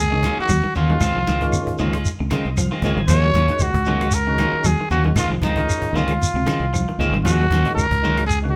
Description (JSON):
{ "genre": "afrobeat", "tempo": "115 BPM", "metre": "4/4", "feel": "swing 55% on 16ths", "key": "Eb dorian", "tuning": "A4 = 443 Hz", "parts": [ { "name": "growling trumpet", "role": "melody", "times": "0.0-8.6 s", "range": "Eb4 to Db5", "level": "-24 LUFS", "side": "equal", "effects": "none" }, { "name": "fingered electric bass", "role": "bass", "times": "0.0-8.6 s", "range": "Ab1 to Db3", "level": "-24 LUFS", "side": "equal", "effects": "none" }, { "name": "percussive tonewheel organ", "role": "accompaniment", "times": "0.1-8.6 s", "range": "Eb3 to Ab5", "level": "-31 LUFS", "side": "equal", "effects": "overdrive, chorus vibrato, slow rotary speaker" }, { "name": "electric guitar at the edge of break-up", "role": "arpeggios", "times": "0.1-8.5 s", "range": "C3 to Gb3", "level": "-30 LUFS", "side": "equal", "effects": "none" }, { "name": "electric guitar at the edge of break-up", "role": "stabs", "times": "0.2-8.2 s", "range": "Eb3 to F4", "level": "-30 LUFS", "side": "equal", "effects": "none" }, { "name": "cajon", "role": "drums", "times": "0.2-8.4 s", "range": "none", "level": "-30 LUFS", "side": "equal", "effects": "none" }, { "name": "claves", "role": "percussion", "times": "0.2-8.3 s", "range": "none", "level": "-40 LUFS", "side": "equal", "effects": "none" }, { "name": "congas", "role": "percussion", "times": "0.2-8.5 s", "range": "none", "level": "-30 LUFS", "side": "equal", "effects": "none" }, { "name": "shekere", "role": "percussion", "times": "0.2-8.4 s", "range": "none", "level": "-27 LUFS", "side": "equal", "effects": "none" } ], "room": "moderate large studio reverb, RT60 1.0 s", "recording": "band playing live in one room", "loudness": "-19 LUFS", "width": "mono", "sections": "0.0-8.6 A section", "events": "tonewheel organ fill 2.1-3.1", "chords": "0.0 Ebm9; 1.0 Dbmaj9; 3.1 Ebm9; 5.2 Dbmaj9; 7.3 Ebm9" }